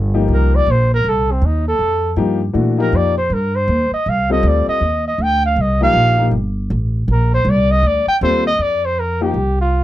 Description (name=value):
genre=modal jazz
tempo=159 BPM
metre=4/4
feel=swing 63% on 8ths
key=F mixolydian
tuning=A4 = 441 Hz
part: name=upright bass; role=bass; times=0.0-9.8 s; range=G1 to Bb2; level=-17 LUFS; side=equal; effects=none
part: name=warm baby grand piano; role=accompaniment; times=0.1-9.3 s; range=E3 to A4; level=-19 LUFS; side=left 5 dB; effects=none
part: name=breathy trumpet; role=melody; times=0.3-9.8 s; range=C4 to G5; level=-17 LUFS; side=equal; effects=none
room=little or no reverb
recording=dry, close 1970s-style studio recording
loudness=-14 LUFS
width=side -14 dB against mid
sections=0.0-8.6 A section; 8.6-9.8 B section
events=trumpet solo 0.0-8.6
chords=0.0 F9sus4; 8.6 Fsus2